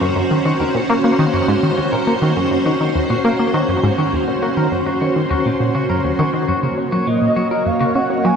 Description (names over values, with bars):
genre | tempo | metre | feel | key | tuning
ambient, sequencer-driven space music | 102 BPM | 4/4 | straight | unclear | A4 = 440 Hz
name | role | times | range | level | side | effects
string machine, full ensemble | sustained chords | 0.0-8.4 s | Bb3 to Db5 | -18 LUFS | right 1 dB | ensemble chorus
clean electric guitar | arpeggios | 0.0-8.4 s | Gb3 to Bb4 | -25 LUFS | left 1 dB | auto-pan, ping-pong delay
tight sequenced synth | riff | 0.0-8.3 s | Eb2 to Db4 | -18 LUFS | equal | chorus, ping-pong delay
expressive portamento lead | melody | 7.1-8.4 s | Eb5 to Ab5 | -20 LUFS | right 1 dB | ensemble chorus, ping-pong delay
room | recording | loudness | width
wet huge ambient reverb, RT60 7.6 s | in a vast, echoing space | -15 LUFS | side -6 dB against mid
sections
0.0-8.4 A section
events
none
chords
0.0 Ebm7; 6.5 Gbmaj7